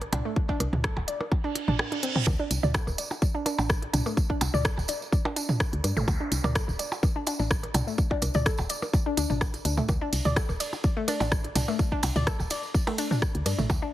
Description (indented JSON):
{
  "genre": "minimal techno",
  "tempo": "126 BPM",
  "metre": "4/4",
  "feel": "swing 53% on 16ths",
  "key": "unclear",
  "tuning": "A4 = 438 Hz",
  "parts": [
    { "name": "woody FM bass", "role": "bass", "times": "0.0-13.8 s", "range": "D1 to G2", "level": "-29 LUFS", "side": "equal", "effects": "sidechain pumping" },
    { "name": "house drum kit", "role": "drums", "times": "0.0-13.6 s", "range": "hi-hat, ride cymbal, rim click", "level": "-32 LUFS", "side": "equal", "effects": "none" },
    { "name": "electronic percussion blips and toms", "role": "percussion", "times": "0.0-13.8 s", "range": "none", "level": "-31 LUFS", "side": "right 1 dB", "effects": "overdrive" },
    { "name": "hollow square pluck", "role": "riff", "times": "0.1-13.9 s", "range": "A3 to D5", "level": "-32 LUFS", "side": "left 1 dB", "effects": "chorus, phaser, sidechain pumping, ping-pong delay" },
    { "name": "electronic kick drum", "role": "drums", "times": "0.4-13.8 s", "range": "none", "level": "-27 LUFS", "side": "equal", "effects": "none" },
    { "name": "reverse cymbal and zap", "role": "sound effects", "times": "1.5-2.3, 6.0-6.1 s", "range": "none", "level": "-35 LUFS", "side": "right 4 dB", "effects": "none" },
    { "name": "tambourine", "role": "percussion", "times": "2.3-13.8 s", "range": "none", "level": "-37 LUFS", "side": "right 4 dB", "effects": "none" }
  ],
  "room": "light reverb, digital ambience",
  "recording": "heavily compressed radio sound",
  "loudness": "-24 LUFS",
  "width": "side -14 dB against mid",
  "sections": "0.0-13.9 A section",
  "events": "reverse cymbal 1.5-2.3",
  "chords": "0.0 D5"
}